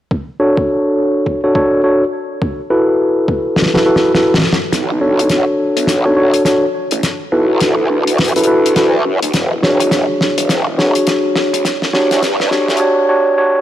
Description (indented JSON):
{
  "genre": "glitch hop",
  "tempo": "104 BPM",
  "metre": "4/4",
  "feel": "swing 61% on 16ths",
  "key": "unclear",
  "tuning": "A4 = 441 Hz",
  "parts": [
    { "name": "electronic kick drum", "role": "drums", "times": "0.1-3.4 s", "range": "none", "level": "-19 LUFS", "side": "equal", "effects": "high-pass filter on kick, studio reverb" },
    { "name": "mellow tine electric piano", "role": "stabs", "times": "0.4-13.6 s", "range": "D4 to C#5", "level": "-13 LUFS", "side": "equal", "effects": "sidechain pumping, low-pass filter, tape echo" },
    { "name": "damped 70s drum kit", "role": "drums", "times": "3.6-12.9 s", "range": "hi-hat, snare drum", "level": "-17 LUFS", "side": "left 1 dB", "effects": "low-pass filter on hats, studio reverb, low-pass filter on snare, low-pass filter on room" },
    { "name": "growl bass", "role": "bass", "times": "4.7-12.8 s", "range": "E1 to G2", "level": "-17 LUFS", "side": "equal", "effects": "chorus, high-pass filter" }
  ],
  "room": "moderate lush hall reverb, RT60 2.6 s",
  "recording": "dry, gritty hardware recording, transformer saturation, high-pass filter",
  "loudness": "-12 LUFS",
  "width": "side -12 dB against mid",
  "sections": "0.1-4.7 A section; 4.7-13.6 B section",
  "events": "drum fill 3.6-4.7, 4.7-12.8; build-up 4.7-13.6; filter sweep on tine electric piano 4.7-13.6",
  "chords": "0.1 Dmaj7; 2.4 Esus24; 4.7 Bm9; 7.0 D6; 9.3 E13; 11.6 G5"
}